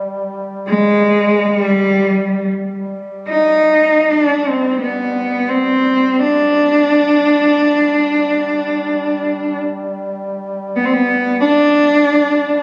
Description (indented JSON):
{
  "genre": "caucasian folk, Caucasian lament",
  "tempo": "free time",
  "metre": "none",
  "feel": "none",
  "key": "G major",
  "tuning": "A4 = 439 Hz",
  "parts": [
    { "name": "mellow duduk", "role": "drone", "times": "0.0-12.6 s", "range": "G3", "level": "-29 LUFS", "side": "equal", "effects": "none" },
    { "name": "warm cello", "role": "melody", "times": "0.7-12.6 s", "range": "G3 to Eb4", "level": "-15 LUFS", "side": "equal", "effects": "slapback echo" }
  ],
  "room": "moderate church reverb, RT60 2.7 s",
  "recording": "recorded on a phone in the room, studio ambience",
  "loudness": "-15 LUFS",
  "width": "mono",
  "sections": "0.0-2.7 A section; 2.7-12.6 A section",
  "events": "none",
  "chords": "none"
}